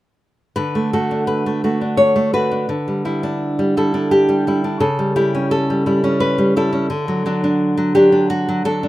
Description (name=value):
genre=romantic piece for solo classical guitar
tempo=85 BPM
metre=3/4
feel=rubato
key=D major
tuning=A4 = 441 Hz
part: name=nylon-string guitar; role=solo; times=0.6-8.9 s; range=C#3 to C#5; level=-15 LUFS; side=equal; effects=none
room=small room ambience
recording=rough home demo mix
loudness=-15 LUFS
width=side -16 dB against mid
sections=0.6-8.9 A section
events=none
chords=0.6 D; 2.7 Em7/D; 4.8 A7/C#; 6.9 D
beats=| 0.56 1.28 1.98 | 2.69 3.40 4.10 | 4.81 5.52 6.23 | 6.92 7.61 8.30